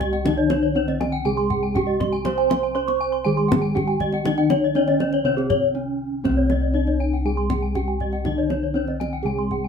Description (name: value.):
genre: Balinese gamelan.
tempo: 120 BPM.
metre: 4/4.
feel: straight.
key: C pelog.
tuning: A4 = 441 Hz.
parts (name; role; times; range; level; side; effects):
gamelan-type bronze metallophone; melody; 0.0-9.7 s; C4 to C5; -24 LUFS; right 2 dB; none.
gamelan-type bronze metallophone; accompaniment; 0.0-9.7 s; C3 to C4; -30 LUFS; left 1 dB; none.
gamelan-type bronze metallophone; arpeggios; 0.0-9.7 s; C5 to C6; -26 LUFS; left 5 dB; none.
gamelan-type bossed gongs; bass; 0.0-9.7 s; C2 to C5; -26 LUFS; left 2 dB; none.
kendang; percussion; 0.0-9.6 s; none; -26 LUFS; left 1 dB; none.
gamelan-type bronze metallophone; arpeggios; 0.4-9.5 s; Ab4-40c to Db6; -29 LUFS; right 5 dB; none.
room: moderate studio reverb, RT60 0.6 s.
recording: band playing live in one room.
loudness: -19 LUFS.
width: side -6 dB against mid.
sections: 0.0-9.7 A section.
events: break 5.5-6.3.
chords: none.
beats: | 0.25 0.75 1.25 1.75 | 2.25 2.75 3.25 3.75 | 4.25 4.75 5.25 5.75 | 6.25 6.75 7.25 7.75 | 8.25 8.75 9.25.